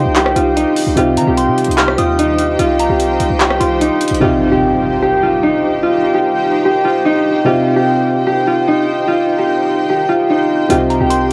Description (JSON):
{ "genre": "hip hop, trap", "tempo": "148 BPM", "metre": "4/4", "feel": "half-time", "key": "C minor", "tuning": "A4 = 436 Hz", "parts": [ { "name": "concert harp", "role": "melody", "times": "0.0-11.3 s", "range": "Eb4 to G4", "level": "-16 LUFS", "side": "equal", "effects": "tape echo" }, { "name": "soft synth bell", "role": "second line", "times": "0.0-4.2, 10.9-11.3 s", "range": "Bb5 to F6", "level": "-26 LUFS", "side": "equal", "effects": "chorus, cassette tape, tape echo" }, { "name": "dark baby grand piano", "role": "accompaniment", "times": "0.0-11.3 s", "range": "C3 to G4", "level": "-22 LUFS", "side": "equal", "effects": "cassette tape" }, { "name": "granular cloud pad", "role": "sustained chords", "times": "0.0-11.3 s", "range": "Eb4 to G5", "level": "-24 LUFS", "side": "equal", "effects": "built-in reverb, cassette tape" }, { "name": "hard-hitting 808-style bass", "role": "bass", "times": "0.0-4.2, 10.7-11.3 s", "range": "Bb1 to Eb3", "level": "-22 LUFS", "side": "equal", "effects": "none" }, { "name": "trap drum kit", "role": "drums", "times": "0.2-4.2, 10.7-11.3 s", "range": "handclaps, hi-hat, rim click", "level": "-21 LUFS", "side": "equal", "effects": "none" }, { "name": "impact", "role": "sound effects", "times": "4.2-5.8 s", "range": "none", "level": "-27 LUFS", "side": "equal", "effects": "none" } ], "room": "little or no reverb", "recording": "home recording on cassette", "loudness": "-14 LUFS", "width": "mono", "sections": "0.0-4.2 A section; 4.2-11.3 B section", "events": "impact 4.2-5.8", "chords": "0.0 Cm", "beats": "0.16 0.56 | 0.97 1.38 1.78 2.19 | 2.59 3.00 3.40 3.81 | 4.21 4.62 5.02 5.43 | 5.83 6.24 6.65 7.05 | 7.46 7.86 8.27 8.67 | 9.08 9.48 9.89 10.29 | 10.70 11.11" }